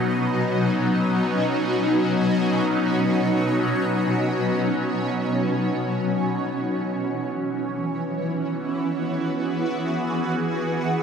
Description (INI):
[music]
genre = ambient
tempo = free time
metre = none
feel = none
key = unclear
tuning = A4 = 440 Hz
[part]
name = shimmering ambient pad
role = sustained chords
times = 0.0-11.0 s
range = B2 to G#4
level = -21 LUFS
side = equal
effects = chorus, built-in reverb, phaser
[part]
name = bowed-like drone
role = drone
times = 0.0-11.0 s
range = B3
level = -31 LUFS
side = equal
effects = built-in reverb
[sound]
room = wet huge ambient reverb, RT60 8.9 s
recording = none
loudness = -21 LUFS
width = side -7 dB against mid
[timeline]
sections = 0.0-6.2 A section; 6.2-11.0 B section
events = none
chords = 0.0 B; 6.2 E